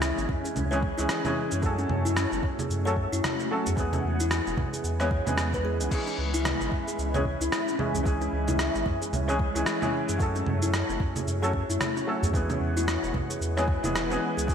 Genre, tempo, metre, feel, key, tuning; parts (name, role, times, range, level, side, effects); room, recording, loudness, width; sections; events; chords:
organic downtempo; 112 BPM; 4/4; swing 59% on 16ths; C# minor; A4 = 440 Hz
felt-muted upright piano; accompaniment; 0.0-14.5 s; E3 to A4; -32 LUFS; right 1 dB; sidechain pumping, digital delay
granular cloud pad; sustained chords; 0.0-14.5 s; G#3 to F#5; -34 LUFS; equal; built-in reverb, ensemble chorus, sidechain pumping
warm sub bass; bass; 0.0-14.5 s; E1 to F#2; -30 LUFS; equal
dusty soul sampler-style drum kit; drums; 0.0-14.5 s; congas, crash cymbal, rim click, shaker; -31 LUFS; right 2 dB; gated reverb
kalimba; arpeggios; 0.2-14.4 s; B3 to C#5; -32 LUFS; left 3 dB; digital delay
electronic kick drum; drums; 0.3-14.5 s; -30 LUFS; equal
udu; percussion; 0.3-13.3 s; -34 LUFS; right 1 dB
moderate lush hall reverb, RT60 1.9 s, digital ambience; bright 1980s-style digital production; -25 LUFS; side -8 dB against mid
0.0-14.5 A section
0.0 C#m; 1.6 F#m; 3.8 E; 5.9 C#m; 10.2 F#m; 12.3 E